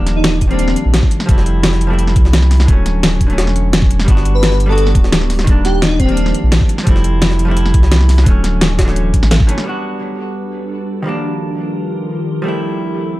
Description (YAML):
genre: liquid drum and bass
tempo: 172 BPM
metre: 4/4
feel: straight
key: unclear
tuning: A4 = 440 Hz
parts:
  - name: vintage hollow-body jazz guitar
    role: accompaniment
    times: 0.0-13.2 s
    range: D3 to F#4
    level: -20 LUFS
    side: equal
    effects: tape echo
  - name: warm sub bass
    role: bass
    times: 0.0-9.4 s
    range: D1 to C2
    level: -14 LUFS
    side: equal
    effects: none
  - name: jungle sampler-style drum kit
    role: drums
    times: 0.1-9.6 s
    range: hi-hat, snare drum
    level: -23 LUFS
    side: equal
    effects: high-pass filter on snare, high-pass filter on hats
  - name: pop drum kit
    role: drums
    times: 0.1-9.6 s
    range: hi-hat, snare drum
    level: -18 LUFS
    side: equal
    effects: none
  - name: airy dreamy lead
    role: melody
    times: 0.2-0.8, 4.3-6.3 s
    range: C4 to B4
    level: -20 LUFS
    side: left 1 dB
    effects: chorus, tape echo
  - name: electronic kick drum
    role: drums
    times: 0.4-9.5 s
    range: none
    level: -12 LUFS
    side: equal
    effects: none
  - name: glassy FM pad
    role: sustained chords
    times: 10.2-13.2 s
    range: Eb3 to B4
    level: -23 LUFS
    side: equal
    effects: ensemble chorus, built-in reverb, phaser, sidechain pumping
room: little or no reverb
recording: dark, warm production, faint mains hum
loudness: -11 LUFS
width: side -17 dB against mid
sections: 0.0-9.7 A section; 9.7-13.2 B section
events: none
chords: 0.0 Ebmaj9; 1.3 Fmaj9; 2.7 Dmaj9; 4.1 Gmaj9; 5.5 Ebmaj9; 6.9 Fmaj9; 8.3 Dmaj9; 9.7 Gmaj9; 11.1 Ebmaj9; 12.5 Fmaj9